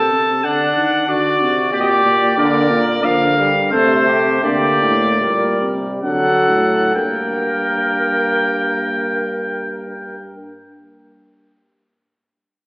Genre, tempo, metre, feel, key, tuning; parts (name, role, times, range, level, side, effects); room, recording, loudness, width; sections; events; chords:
classical, imitative canzona for brass ensemble; 62-94 BPM; 3/4; straight; G minor; A4 = 441 Hz
bright trumpet; melody; 0.0-10.4 s; C5 to A5; -17 LUFS; equal
warm flugelhorn; second line; 0.0-10.4 s; D4 to Bb4; -20 LUFS; equal
mellow tuba; bass; 0.0-10.4 s; G2 to Eb3; -21 LUFS; equal
warm trombone; accompaniment; 2.4-10.4 s; F3 to Bb3; -22 LUFS; equal
wet concert hall reverb, RT60 2.1 s; heard from further back in the room, AM radio sound; -14 LUFS; side -28 dB against mid
0.0-7.0 A section; 7.0-12.7 B section
slowing down 1.4-7.0
0.4 D; 1.7 Gm/Bb; 2.4 Bb; 3.7 Am7/C; 4.4 Gm; 6.0 D; 7.0 Gm